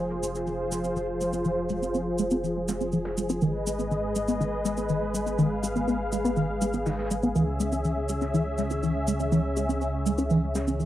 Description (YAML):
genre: melodic techno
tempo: 122 BPM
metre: 4/4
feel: straight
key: F harmonic minor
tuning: A4 = 440 Hz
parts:
  - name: warm analog pad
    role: sustained chords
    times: 0.0-10.9 s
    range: Db3 to F5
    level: -29 LUFS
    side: equal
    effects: chorus, cassette tape
  - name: tight sequenced synth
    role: arpeggios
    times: 0.0-10.9 s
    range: Eb3 to Db4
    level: -27 LUFS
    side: equal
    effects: chorus, phaser, cassette tape, analog delay
  - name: dark detuned saw bass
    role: bass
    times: 0.0-10.9 s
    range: F1 to Db2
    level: -34 LUFS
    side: equal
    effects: none
  - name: soft brush drum kit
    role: drums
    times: 0.2-10.9 s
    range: hi-hat, snare drum, tambourine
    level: -47 LUFS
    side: equal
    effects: high-pass filter on hats, low-pass filter on hats, cassette tape, high-pass filter on snare, low-pass filter on snare, high-pass filter on perc, low-pass filter on perc, high-pass filter on room, low-pass filter on room
  - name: cabasa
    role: percussion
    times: 0.2-10.9 s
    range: none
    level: -39 LUFS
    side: right 2 dB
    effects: none
room: wet studio reverb, RT60 0.6 s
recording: home recording on cassette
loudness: -25 LUFS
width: side -13 dB against mid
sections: 0.0-10.9 A section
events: filter sweep on synth arpeggio sound 0.0-10.9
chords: 0.0 Fm; 3.4 Abm; 7.4 Dbm